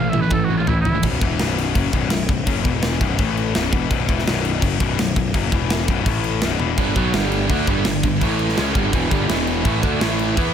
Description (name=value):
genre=heavy metal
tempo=167 BPM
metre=4/4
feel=straight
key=B minor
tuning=A4 = 440 Hz
part: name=clear oboe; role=melody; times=0.0-1.0 s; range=E4 to E#5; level=-26 LUFS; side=right 4 dB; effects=ping-pong delay
part: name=heavy high-gain guitar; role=riff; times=0.0-10.5 s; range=B1 to E4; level=-23 LUFS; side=left 13 dB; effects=distortion
part: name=heavy high-gain guitar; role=riff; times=0.0-1.0, 6.8-10.5 s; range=E2 to E4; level=-22 LUFS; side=right 13 dB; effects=distortion
part: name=fuzz picked electric bass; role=bass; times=0.0-10.5 s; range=B0 to E2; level=-23 LUFS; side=equal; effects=overdrive
part: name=tight metal drum kit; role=drums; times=0.1-10.5 s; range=crash cymbal, kick drum, snare drum, toms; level=-22 LUFS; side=equal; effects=none
room=small room ambience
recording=none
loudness=-17 LUFS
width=side -8 dB against mid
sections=0.0-1.0 A section; 1.0-10.5 B section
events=drum fill 0.0-1.0, 6.6; oboe solo 0.0-1.0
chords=0.0 A; 1.0 B5; 2.7 E5; 3.0 B5; 3.2 A5; 3.5 B5; 5.5 E5; 5.9 B5; 6.1 A5; 6.4 B5; 6.8 G5; 8.2 A5; 8.6 G5; 9.3 E5; 9.7 A5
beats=0.32 0.68 | 1.04 1.40 1.75 2.11 | 2.47 2.83 3.19 3.55 | 3.91 4.26 4.62 4.98 | 5.34 5.70 6.06 6.42 | 6.78 7.14 7.50 7.86 | 8.22 8.58 8.94 9.30 | 9.66 10.02 10.38